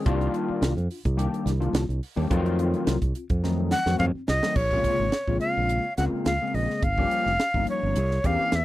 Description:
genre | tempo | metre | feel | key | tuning
electric jazz fusion | 106 BPM | 4/4 | swing 53% on 16ths | Bb minor from 4.6 s | A4 = 440 Hz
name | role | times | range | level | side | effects
overdriven tine electric piano | accompaniment | 0.0-8.6 s | C3 to Ab4 | -28 LUFS | left 3 dB | ensemble chorus
fingered electric bass | bass | 0.1-8.6 s | F1 to F2 | -26 LUFS | right 1 dB | none
tight funk drum kit | drums | 0.1-8.6 s | crash cymbal, hi-hat, kick drum, snare drum, toms | -28 LUFS | right 1 dB | none
breathy bright jazz flute | melody | 3.7-8.6 s | Db5 to Gb5 | -25 LUFS | equal | none
room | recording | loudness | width
light reverb | dry, close 1970s-style studio recording | -22 LUFS | side -16 dB against mid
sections
0.0-4.6 A section; 4.6-8.6 B section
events
drum fill 3.4-4.6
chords
0.1 Cm11; 2.3 F7b9; 4.6 Bbm9; 6.8 Gm7b5; 8.0 C7b9

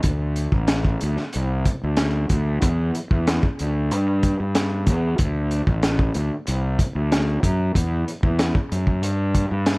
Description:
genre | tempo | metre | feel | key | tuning
psychedelic rock | 94 BPM | 4/4 | straight | D mixolydian | A4 = 441 Hz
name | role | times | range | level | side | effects
fuzz fingered electric bass | bass | 0.0-9.8 s | A1 to G2 | -21 LUFS | equal | overdrive
crunchy breakbeat drum kit | drums | 0.0-9.8 s | hi-hat, kick drum, snare drum | -22 LUFS | equal | none
room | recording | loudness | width
little or no reverb | dry, close 1970s-style studio recording | -19 LUFS | side -29 dB against mid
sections
0.0-9.8 A section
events
none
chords
none

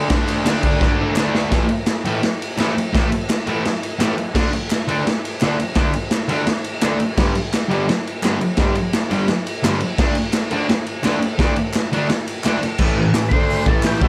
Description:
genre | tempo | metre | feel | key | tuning
garage rock duo or trio | 170 BPM | 4/4 | straight | unclear | A4 = 440 Hz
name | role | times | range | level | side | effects
fuzz guitar | riff | 0.0-14.1 s | G2 to D4 | -22 LUFS | equal | distortion
raw garage drum kit | drums | 0.1-14.1 s | crash cymbal, hi-hat, kick drum, ride cymbal, snare drum | -22 LUFS | equal | none
group handclap | percussion | 0.3-13.9 s | none | -33 LUFS | equal | none
combo organ | melody | 13.3-14.1 s | E4 to C5 | -26 LUFS | equal | none
room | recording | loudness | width
light reverb | none | -19 LUFS | mono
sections
0.0-1.5 A section; 1.5-12.8 B section; 12.8-14.1 C section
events
drum fill 0.8-1.5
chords
0.0 D5; 1.5 A5; 4.3 D5; 7.2 G5; 10.0 D5; 12.8 A5; 13.3 D5

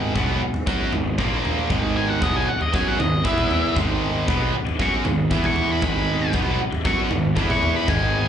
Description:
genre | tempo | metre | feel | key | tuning
quiet-loud alternative rock | 116 BPM | 4/4 | straight | G# minor | A4 = 440 Hz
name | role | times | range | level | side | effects
twelve-string electric guitar | arpeggios | 0.0-8.3 s | G#2 to B4 | -31 LUFS | left 1 dB | lush chorus
tight distorted guitar | riff | 0.0-8.3 s | G#2 to F#4 | -27 LUFS | left 13 dB | distortion, slapback echo
tight distorted guitar | riff | 0.0-8.3 s | G#2 to F#4 | -26 LUFS | right 10 dB | distortion, slapback echo
fuzz picked electric bass | bass | 0.0-8.3 s | G#1 to F#2 | -26 LUFS | equal | overdrive
huge arena drum kit | drums | 0.2-8.0 s | kick drum, toms | -25 LUFS | equal | none
octave-fuzz lead guitar | melody | 2.0-8.3 s | D#5 to C#6 | -26 LUFS | left 2 dB | distortion, slapback echo
room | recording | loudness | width
light reverb | live gig heard through the venue's PA, club reverb, nothing above 10.4 kHz | -19 LUFS | side -9 dB against mid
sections
0.0-8.3 A section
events
lead electric guitar solo 0.0-8.3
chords
0.0 G#m; 1.2 A#5; 1.7 G#m; 3.2 E5; 3.8 G#m; 5.3 E5; 5.8 G#m; 7.4 E5

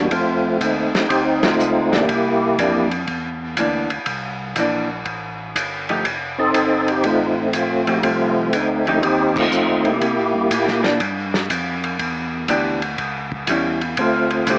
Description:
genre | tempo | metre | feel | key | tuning
soul jazz organ trio | 121 BPM | 4/4 | swing 68% on 8ths | unclear | A4 = 440 Hz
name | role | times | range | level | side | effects
percussive tonewheel organ | melody | 0.0-2.9, 6.4-10.8, 14.0-14.6 s | A3 to A4 | -20 LUFS | equal | slow rotary speaker, overdrive, chorus vibrato
vintage hollow-body jazz guitar | accompaniment | 0.0-14.6 s | D3 to G4 | -24 LUFS | equal | none
tonewheel organ | bass | 0.0-14.6 s | F1 to C3 | -32 LUFS | equal | slow rotary speaker
warm soul drum kit | drums | 0.1-14.6 s | crash cymbal, hi-hat, kick drum, ride cymbal, snare drum | -25 LUFS | equal | none
room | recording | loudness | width
moderate club reverb, RT60 0.7 s | worn, warbling old tape, cassette tape, warbly pitch drift, small speaker sound | -20 LUFS | mono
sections
0.0-14.6 A section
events
band accent 1.3, 9.3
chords
0.1 F7; 2.1 C9; 6.0 F9; 10.0 C7; 12.0 Em7; 13.0 C#dim; 14.0 Dm7

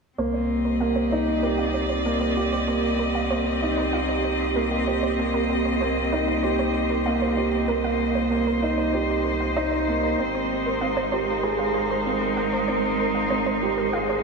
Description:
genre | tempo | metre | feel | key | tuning
electronica | 96 BPM | 4/4 | straight | C minor | A4 = 440 Hz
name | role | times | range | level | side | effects
muted string quartet | sustained chords | 0.2-14.2 s | Ab3 to Eb5 | -26 LUFS | equal | none
wide unison pluck | arpeggios | 0.2-14.2 s | Bb4 to F5 | -31 LUFS | right 3 dB | diffuse ambient delay
dark grand piano | riff | 0.2-14.2 s | Bb3 to C5 | -24 LUFS | right 2 dB | low-pass filter, diffuse ambient delay
warm sub bass | bass | 0.2-14.2 s | Ab1 to C2 | -32 LUFS | equal | tube saturation
room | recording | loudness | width
wet lush hall reverb, RT60 2.8 s | dreamy mix soaked in reverb, small room reverb | -21 LUFS | side -4 dB against mid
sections
0.2-14.2 A section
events
filter sweep on grand piano 0.2-14.2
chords
0.2 Cm7; 10.2 Abmaj7

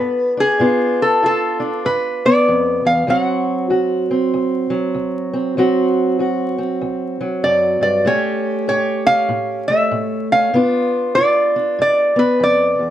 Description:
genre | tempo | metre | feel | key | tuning
acoustic country blues, solo or duo | 96 BPM | 4/4 | swing 62% on 8ths | D mixolydian | A4 = 440 Hz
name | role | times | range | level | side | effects
lap resonator guitar | melody | 0.0-3.7, 7.4-12.9 s | G#4 to F#5 | -16 LUFS | equal | none
fingerpicked steel-string acoustic guitar | accompaniment | 0.0-12.9 s | D2 to G4 | -18 LUFS | equal | none
room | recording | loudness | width
moderate studio reverb, RT60 0.8 s | vinyl crackle | -14 LUFS | side -11 dB against mid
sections
0.0-12.9 A section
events
none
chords
0.0 G7; 3.1 D7; 8.1 A7; 10.6 G7

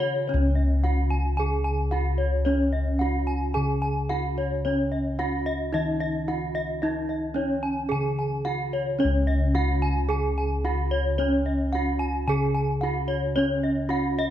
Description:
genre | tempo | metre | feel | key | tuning
Balinese gamelan | 110 BPM | 4/4 | straight | unclear | A4 = 440 Hz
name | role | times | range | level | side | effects
gamelan-type bronze metallophone | melody | 0.0-14.3 s | Db4 to Ab4+25c | -30 LUFS | right 3 dB | none
gamelan-type bronze metallophone | arpeggios | 0.0-14.3 s | Db5 to Ab5+25c | -29 LUFS | left 1 dB | none
gamelan-type bossed gongs | bass | 0.0-14.3 s | Db2 to Eb4+30c | -25 LUFS | left 1 dB | none
room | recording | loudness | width
light reverb | dark, warm production | -23 LUFS | side -11 dB against mid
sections
0.0-9.0 A section; 9.0-14.3 A section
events
none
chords
none

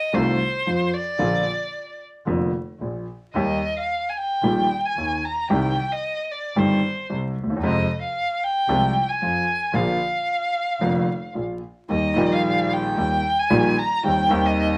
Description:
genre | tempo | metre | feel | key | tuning
tango | 112 BPM | 4/4 | rubato | Eb major | A4 = 443 Hz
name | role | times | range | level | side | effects
warm violin | second line | 0.0-14.8 s | C5 to Bb5 | -26 LUFS | equal | none
warm concert grand piano | accompaniment | 0.1-14.8 s | F1 to G4 | -24 LUFS | equal | none
clear double bass | bass | 0.1-14.8 s | F1 to F2 | -34 LUFS | equal | none
room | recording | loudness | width
moderate studio reverb, RT60 0.6 s | vinyl crackle | -23 LUFS | mono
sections
0.0-11.9 A section; 11.9-14.8 A section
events
violin solo 0.0-11.9, 11.9-14.8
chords
0.0 F7; 1.2 Bb; 3.4 Eb; 5.5 Cm; 7.6 Fm; 9.7 Bb; 11.9 Eb; 14.0 Cm/Eb

